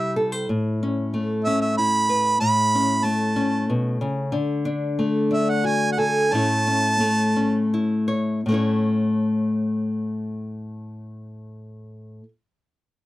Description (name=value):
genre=folk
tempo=80-93 BPM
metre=3/4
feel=straight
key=A major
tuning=A4 = 437 Hz
part: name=clear harmonica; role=melody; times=0.0-7.7 s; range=E5 to B5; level=-21 LUFS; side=right 2 dB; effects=none
part: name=nylon-string guitar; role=accompaniment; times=0.0-12.3 s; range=A2 to C#5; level=-22 LUFS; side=left 1 dB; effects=none
room=moderate booth ambience, RT60 0.2 s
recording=dry, close 1970s-style studio recording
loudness=-20 LUFS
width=side -16 dB against mid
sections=0.0-8.4 A section; 8.4-12.9 B section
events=slowing down 4.3-8.4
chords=0.5 Aadd9; 4.3 D; 6.3 A